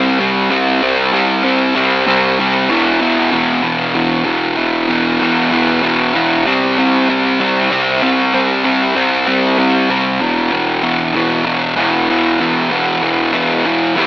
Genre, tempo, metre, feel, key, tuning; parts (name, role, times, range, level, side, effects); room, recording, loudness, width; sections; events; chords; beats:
rock; 96 BPM; 3/4; straight; E minor; A4 = 440 Hz
fuzz guitar; solo; 0.0-14.1 s; E2 to G4; -11 LUFS; equal; distortion
moderate huge ambient reverb, RT60 7.5 s; AM radio sound; -11 LUFS; side -17 dB against mid
0.0-14.0 A section
build-up 0.0-14.0
0.0 C5; 2.7 E5; 6.5 C5; 10.2 E5
0.19 | 0.82 1.45 2.07 | 2.70 3.33 3.95 | 4.58 5.21 5.83 | 6.46 7.09 7.71 | 8.34 8.96 9.59 | 10.22 10.84 11.47 | 12.09 12.72 13.34 | 13.97